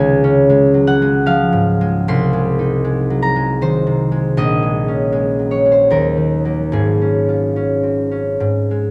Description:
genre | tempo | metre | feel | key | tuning
classical, solo harp piece | 62-80 BPM | 3/4 | rubato | Db major | A4 = 442 Hz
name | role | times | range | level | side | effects
concert harp | solo | 0.0-8.9 s | Ab1 to C6 | -16 LUFS | equal | none
room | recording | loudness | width
wet recital hall reverb, RT60 1.6 s | dark, warm production | -16 LUFS | mono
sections
0.0-8.9 A section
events
none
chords
0.0 Db; 2.1 Ab/C; 4.4 Bbm7; 5.9 Ebm; 6.7 Db/Ab

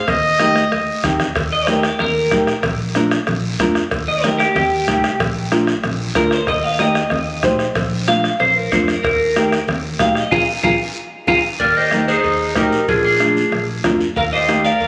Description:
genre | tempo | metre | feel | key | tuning
latin, cumbia | 187 BPM | 4/4 | straight | Eb major | A4 = 438 Hz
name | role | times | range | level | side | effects
bright trumpet | second line | 0.0-1.0, 11.6-14.9 s | D4 to F5 | -23 LUFS | equal | none
upright bass | bass | 0.1-14.9 s | Bb1 to F2 | -28 LUFS | equal | none
bombo | percussion | 0.1-14.6 s | none | -26 LUFS | equal | none
congas | percussion | 0.1-14.8 s | none | -27 LUFS | equal | none
cowbell and timbales | percussion | 0.1-14.9 s | none | -32 LUFS | equal | none
guiro | percussion | 0.1-14.9 s | none | -32 LUFS | equal | none
nylon-string guitar | accompaniment | 0.4-14.7 s | D4 to C5 | -24 LUFS | equal | none
clean electric guitar | melody | 1.5-14.9 s | F4 to Bb5 | -20 LUFS | equal | spring reverb, slapback echo
room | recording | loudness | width
light reverb | recorded on a phone in the room, studio reverb | -17 LUFS | mono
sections
0.0-1.4 A section; 1.4-11.6 B section; 11.6-14.9 C section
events
trumpet solo 0.0-1.4; drum fill 0.6-1.4, 10.8-11.6; clean electric guitar solo 1.4-11.6; band accent 10.3-11.6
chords
0.1 Eb; 2.6 Bb; 3.9 Eb; 5.2 Bb; 6.5 Eb; 7.8 Bb; 9.0 Eb; 10.3 Bb5; 11.6 Eb; 12.9 Bb7; 14.2 Eb

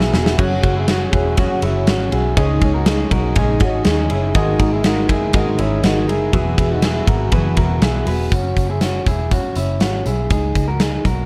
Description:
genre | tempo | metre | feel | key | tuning
jangly indie pop | 121 BPM | 4/4 | straight | unclear | A4 = 440 Hz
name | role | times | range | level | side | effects
fingerpicked twelve-string acoustic guitar | accompaniment | 0.0-8.3 s | G#2 to A#4 | -25 LUFS | equal | none
soft electric-piano-like synth keys | accompaniment | 0.0-8.3 s | D#4 to F#5 | -28 LUFS | equal | chorus
electric guitar at the edge of break-up | arpeggios | 0.0-11.3 s | C#4 to B4 | -25 LUFS | equal | slapback echo
vintage muted picked electric bass | bass | 0.0-11.3 s | E1 to D#2 | -23 LUFS | equal | none
big rock drum kit | drums | 0.0-11.2 s | crash cymbal, hi-hat, kick drum, ride cymbal, snare drum | -21 LUFS | equal | none
room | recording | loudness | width
light reverb | dark, warm production | -17 LUFS | mono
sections
0.0-8.3 A section; 8.3-11.3 B section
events
drum fill 0.0-0.4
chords
0.4 F#sus2; 2.4 C#sus2; 4.4 G#sus2; 6.3 Eadd9; 8.3 F#sus2; 10.3 C#sus2

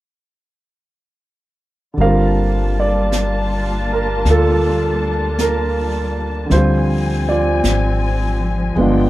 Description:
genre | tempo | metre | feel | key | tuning
jazz ballad | 53 BPM | 4/4 | swing 69% on 8ths | G minor | A4 = 440 Hz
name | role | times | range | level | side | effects
warm concert grand piano | accompaniment | 1.9-9.1 s | D3 to F5 | -18 LUFS | right 2 dB | none
muted studio string section | sustained chords | 2.0-9.1 s | F3 to A5 | -23 LUFS | left 3 dB | none
upright bass | bass | 2.0-9.1 s | G1 to D2 | -19 LUFS | left 1 dB | none
jazz brush drum kit | drums | 2.0-9.1 s | brushed snare drum, hi-hat, snare drum | -28 LUFS | left 1 dB | none
room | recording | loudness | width
studio ambience | none | -15 LUFS | side -16 dB against mid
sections
2.0-9.1 A section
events
none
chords
2.0 Gm9; 6.5 Dm7b5

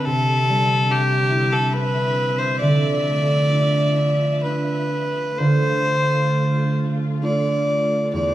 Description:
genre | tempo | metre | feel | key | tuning
celtic folk, Celtic slow air | 62-72 BPM | 3/4 | rubato | D dorian | A4 = 437 Hz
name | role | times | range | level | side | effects
warm fiddle | melody | 0.0-8.3 s | G4 to D5 | -21 LUFS | left 1 dB | none
concert harp | accompaniment | 0.0-8.3 s | E2 to F4 | -20 LUFS | right 1 dB | none
warm studio string section | sustained chords | 0.0-8.3 s | D3 to E5 | -30 LUFS | left 1 dB | none
room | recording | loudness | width
wet recital hall reverb, RT60 1.6 s | recorded in a church or concert hall | -17 LUFS | side -14 dB against mid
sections
0.0-5.4 A section; 5.4-8.3 B section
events
none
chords
0.1 Cadd9; 2.6 Dmadd9; 5.4 Dm

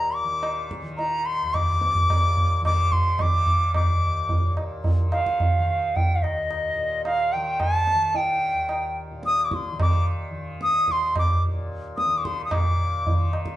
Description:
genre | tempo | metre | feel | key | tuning
indian classical, Hindustani | 109 BPM | 4/4 | straight | Eb raga yaman | A4 = 440 Hz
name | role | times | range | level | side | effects
bright reedy bansuri | melody | 0.0-13.3 s | Eb5 to Eb6 | -23 LUFS | equal | none
tanpura | drone | 0.0-13.6 s | Eb2 to Eb3 | -35 LUFS | left 1 dB | none
tabla | percussion | 0.4-13.6 s | none | -24 LUFS | right 1 dB | none
room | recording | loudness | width
wet large studio reverb, RT60 1.1 s | band playing live in one room, nothing above 10.9 kHz | -21 LUFS | side -14 dB against mid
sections
0.0-12.5 A section; 12.5-13.6 B section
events
none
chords
none

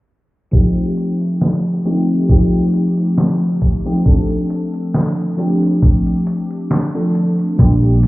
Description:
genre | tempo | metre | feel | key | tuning
vaporwave | 68 BPM | 4/4 | swing 54% on 16ths | unclear | A4 = 442 Hz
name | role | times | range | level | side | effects
FM electric piano with soft pad layer | accompaniment | 0.5-8.1 s | F3 to A4 | -16 LUFS | equal | analog chorus, analog delay
detuned 8-bit digital drum machine | drums | 0.5-8.1 s | hi-hat, snare drum | -20 LUFS | equal | none
electronic kick drum | drums | 0.5-7.8 s | none | -13 LUFS | equal | none
vintage slap bass | bass | 7.6-8.1 s | Bb1 | -12 LUFS | equal | none
room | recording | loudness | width
moderate lush hall reverb, RT60 2.3 s | heard muffled through a wall, club reverb, EQ, low-pass filter | -13 LUFS | side -19 dB against mid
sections
0.5-8.1 A section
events
filter sweep 0.5-8.1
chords
0.5 F9; 4.1 Dm7

